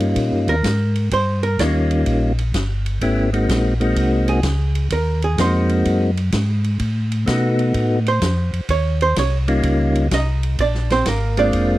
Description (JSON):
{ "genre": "soul jazz organ trio", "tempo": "127 BPM", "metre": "4/4", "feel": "swing 67% on 8ths", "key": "Eb mixolydian", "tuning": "A4 = 440 Hz", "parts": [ { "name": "percussive tonewheel organ", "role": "melody", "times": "0.0-11.8 s", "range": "G3 to G4", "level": "-19 LUFS", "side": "left 1 dB", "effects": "slow rotary speaker, slapback echo" }, { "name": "mellow tonewheel organ", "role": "bass", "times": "0.0-11.8 s", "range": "F1 to Cb3", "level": "-19 LUFS", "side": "equal", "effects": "chorus vibrato, slow rotary speaker" }, { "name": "vintage drum kit", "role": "drums", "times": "0.0-11.7 s", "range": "hi-hat, kick drum, ride cymbal, snare drum", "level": "-27 LUFS", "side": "equal", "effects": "none" }, { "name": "archtop guitar, miked and amplified", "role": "accompaniment", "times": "0.5-11.8 s", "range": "Bb3 to Eb5", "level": "-22 LUFS", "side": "right 4 dB", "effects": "none" } ], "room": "little or no reverb", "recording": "dry, close 1970s-style studio recording", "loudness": "-16 LUFS", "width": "side -16 dB against mid", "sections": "0.0-11.8 A section", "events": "hollow-body jazz guitar solo 0.0-11.8", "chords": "0.0 Eb7; 3.0 Ab7; 6.8 Adim7; 8.7 Eb7; 10.6 Bb7", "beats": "0.17 0.64 | 1.11 1.59 2.06 2.54 | 3.01 3.48 3.96 4.43 | 4.90 5.38 5.85 6.32 | 6.80 7.27 7.74 8.21 | 8.69 9.16 9.63 10.11 | 10.58 11.05 11.53" }